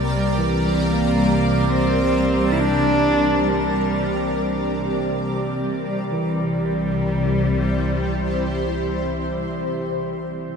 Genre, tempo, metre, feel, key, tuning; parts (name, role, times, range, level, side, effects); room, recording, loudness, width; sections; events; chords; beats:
ambient; free time; C mixolydian; A4 = 440 Hz
shimmering ambient pad; sustained chords; 0.0-9.5 s; C3 to D5; -23 LUFS; equal; chorus, built-in reverb, phaser
barky tine electric piano; arpeggios; 0.0-10.6 s; E3 to Bb3; -27 LUFS; equal; overdrive, tape echo
deep rumbling drone; bass; 0.0-9.3 s; C2; -30 LUFS; equal; built-in reverb
analog drone; drone; 0.0-9.3 s; C3; -29 LUFS; equal; chorus
drifting glass-harmonics texture; texture; 0.0-6.1 s; D5; -31 LUFS; right 4 dB; chorus, built-in reverb
warm cello; melody; 0.8-9.3 s; G3 to E4; -24 LUFS; right 1 dB; tape echo
wet cathedral reverb, RT60 5.2 s; in a vast, echoing space; -18 LUFS; side -6 dB against mid
0.0-6.1 A section; 6.1-8.8 B section
0.0 Gm/C; 6.1 C
free time